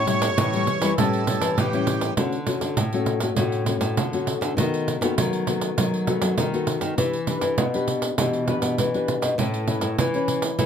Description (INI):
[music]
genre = samba and choro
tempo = 100 BPM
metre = 4/4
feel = straight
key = D major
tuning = A4 = 440 Hz
[part]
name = accordion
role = second line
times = 0.0-2.1 s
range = G4 to C#5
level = -25 LUFS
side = right 2 dB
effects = none
[part]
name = nylon-string guitar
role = accompaniment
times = 0.0-10.7 s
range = A2 to B4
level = -26 LUFS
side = left 5 dB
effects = none
[part]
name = nylon-string guitar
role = bass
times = 0.0-10.7 s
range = A2 to F#3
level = -26 LUFS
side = equal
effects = none
[part]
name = pandeiro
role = percussion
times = 0.1-10.7 s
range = none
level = -26 LUFS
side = right 4 dB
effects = none
[sound]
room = light reverb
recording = close, detailed microphones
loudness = -21 LUFS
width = side -8 dB against mid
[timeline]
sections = 0.0-2.2 A section; 2.2-10.7 B section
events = none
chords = 0.0 A7; 2.2 Dmaj7; 4.6 B7/D#; 7.0 Em7; 9.4 Aadd9